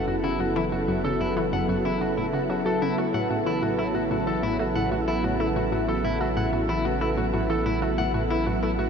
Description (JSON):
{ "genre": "ambient, sequencer-driven space music", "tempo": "93 BPM", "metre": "4/4", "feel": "straight", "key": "unclear", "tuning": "A4 = 440 Hz", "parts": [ { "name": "sweeping resonant pad", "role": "sustained chords", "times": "0.0-8.9 s", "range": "C#3 to A4", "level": "-26 LUFS", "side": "right 1 dB", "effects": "chorus" }, { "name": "semi-hollow electric guitar", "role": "arpeggios", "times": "0.0-8.9 s", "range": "E4 to F#5", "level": "-29 LUFS", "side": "left 2 dB", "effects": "auto-pan, low-pass filter, analog delay" }, { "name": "warm sub bass", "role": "bass", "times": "0.0-8.9 s", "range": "F#1 to A1", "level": "-33 LUFS", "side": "equal", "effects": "none" }, { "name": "wind-like tuned noise texture", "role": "texture", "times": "0.0-8.9 s", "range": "A4 to A5", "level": "-41 LUFS", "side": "equal", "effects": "none" }, { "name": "analog pluck", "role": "riff", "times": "0.1-8.9 s", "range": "F#2 to A3", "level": "-30 LUFS", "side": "equal", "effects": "chorus, analog delay" } ], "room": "wet shimmer reverb, RT60 9.6 s", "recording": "dark, warm production", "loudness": "-23 LUFS", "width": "side -6 dB against mid", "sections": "0.0-8.9 A section", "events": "none", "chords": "0.0 F#m7; 3.0 A6", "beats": "| 0.40 1.04 1.69 2.34 | 2.98 3.63 4.27 4.92 | 5.56 6.21 6.85 7.50 | 8.14 8.79" }